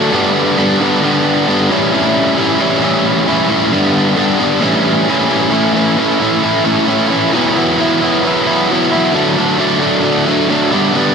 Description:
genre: rock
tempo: 133 BPM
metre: 4/4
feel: straight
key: unclear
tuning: A4 = 439 Hz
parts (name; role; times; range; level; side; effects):
- biting overdriven guitar; solo; 0.0-11.1 s; G2 to E4; -11 LUFS; equal; ping-pong delay
room: wet lush hall reverb, RT60 2.7 s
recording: dreamy mix soaked in reverb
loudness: -11 LUFS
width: side -6 dB against mid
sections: 0.0-5.5 A section; 5.5-11.1 B section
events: none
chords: 0.1 G; 1.7 A5; 3.7 G; 4.6 A5; 5.5 A; 7.3 Esus2; 9.1 D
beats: | 0.11 0.57 1.02 1.47 | 1.92 2.38 2.83 3.28 | 3.73 4.18 4.63 5.09 | 5.54 5.99 6.44 6.89 | 7.34 7.79 8.24 8.69 | 9.14 9.59 10.04 10.49 | 10.94

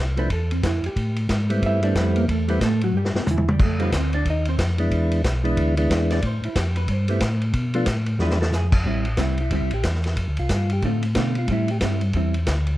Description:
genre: soul jazz organ trio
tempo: 182 BPM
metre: 4/4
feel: swing 61% on 8ths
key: A minor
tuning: A4 = 440 Hz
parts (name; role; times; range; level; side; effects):
- mellow tonewheel organ; bass; 0.0-12.8 s; A1 to B2; -22 LUFS; equal; chorus vibrato, slow rotary speaker
- percussive tonewheel organ; melody; 0.2-11.8 s; E3 to G4; -25 LUFS; equal; slow rotary speaker, plate reverb
- vintage hollow-body jazz guitar; accompaniment; 0.2-12.3 s; B2 to E5; -27 LUFS; right 2 dB; none
- vintage drum kit; drums; 0.2-12.7 s; crash cymbal, hi-hat, kick drum, ride cymbal, snare drum, toms; -26 LUFS; equal; none
room: little or no reverb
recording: dark, warm production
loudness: -19 LUFS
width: side -15 dB against mid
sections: 0.0-8.9 A section; 8.9-12.8 A section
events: hollow-body jazz guitar solo 0.0-8.9; drum fill 2.9-3.6, 8.2-8.5; tonewheel organ solo 8.9-12.8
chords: 0.0 Dm7; 1.0 Am7; 3.6 F7; 4.9 E7; 6.2 Am7; 7.5 Bm7b5; 8.2 E7b9; 8.9 Am7; 10.2 Dm7; 11.5 Am7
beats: 0.30 0.63 | 0.96 1.29 1.62 1.95 | 2.28 2.61 2.94 3.27 | 3.59 3.92 4.25 4.58 | 4.91 5.24 5.57 5.90 | 6.22 6.55 6.88 7.21 | 7.54 7.87 8.20 8.53 | 8.86 9.19 9.51 9.84 | 10.17 10.50 10.83 11.16 | 11.49 11.82 12.15 12.48

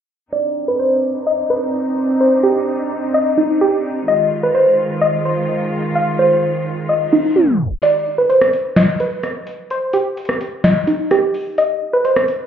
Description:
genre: hip hop, trap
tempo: 128 BPM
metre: 4/4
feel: half-time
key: C harmonic minor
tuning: A4 = 441 Hz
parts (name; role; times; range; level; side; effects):
- soft round pluck; melody; 0.3-12.5 s; Eb4 to F5; -15 LUFS; equal; chorus, low-pass filter, tape echo
- muted symphonic string section; sustained chords; 0.3-7.8 s; Eb3 to F4; -21 LUFS; right 1 dB; low-pass filter
- reverse cymbal; sound effects; 7.0-7.8 s; none; -38 LUFS; left 2 dB; none
- booming analog drum machine; drums; 7.8-12.4 s; hi-hat, rim click, snare drum; -18 LUFS; equal; none
room: moderate lush hall reverb, RT60 2.0 s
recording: heard muffled through a wall, club reverb, EQ, tape stop, nothing above 7.5 kHz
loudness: -14 LUFS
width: side -8 dB against mid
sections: 0.3-7.8 A section; 7.8-12.5 B section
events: filter sweep 0.3-7.8; reverse cymbal 7.0-7.8; tape stop 7.4-7.8; kick muted 7.8-12.5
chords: 0.3 Cmadd9; 4.1 Fm7; 7.8 N.C.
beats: | 0.33 0.80 1.26 1.73 | 2.20 2.67 3.14 3.61 | 4.08 4.55 5.01 5.48 | 5.95 6.42 6.89 7.36 | 7.83 8.30 8.77 9.23 | 9.70 10.17 10.64 11.11 | 11.58 12.05

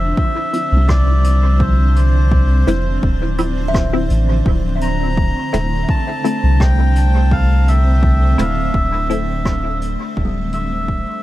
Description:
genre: ambient dub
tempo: 84 BPM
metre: 4/4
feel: straight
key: D minor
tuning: A4 = 439 Hz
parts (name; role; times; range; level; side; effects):
- melodica; melody; 0.0-11.2 s; C5 to Bb5; -23 LUFS; equal; analog delay
- granular cloud pad; sustained chords; 0.0-11.2 s; D3 to C5; -24 LUFS; right 1 dB; built-in reverb
- filtered dub chord stab; stabs; 0.0-9.3 s; F3 to E4; -25 LUFS; left 2 dB; phaser, wide subtle chorus, vintage 12-bit sampler grit, dub echo
- soft dub sub bass; bass; 0.0-11.0 s; D1 to C2; -15 LUFS; equal; none
- electronic kick drum; drums; 0.2-11.0 s; none; -18 LUFS; equal; overdrive
- jazz brush drum kit; drums; 0.5-10.7 s; hi-hat, rim click, toms; -30 LUFS; equal; dub echo
- buzzing kalimba; arpeggios; 0.8-5.4, 10.2-11.2 s; G3 to E5; -28 LUFS; left 1 dB; analog delay
room: studio ambience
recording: echo-heavy mix, vinyl crackle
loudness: -13 LUFS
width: side -15 dB against mid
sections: 0.0-11.2 A section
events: fade-out 8.3-11.2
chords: 0.0 Dm9; 4.5 Am/D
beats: 0.17 0.89 | 1.60 2.32 3.03 3.74 | 4.46 5.17 5.89 6.60 | 7.32 8.03 8.74 9.46 | 10.17 10.89

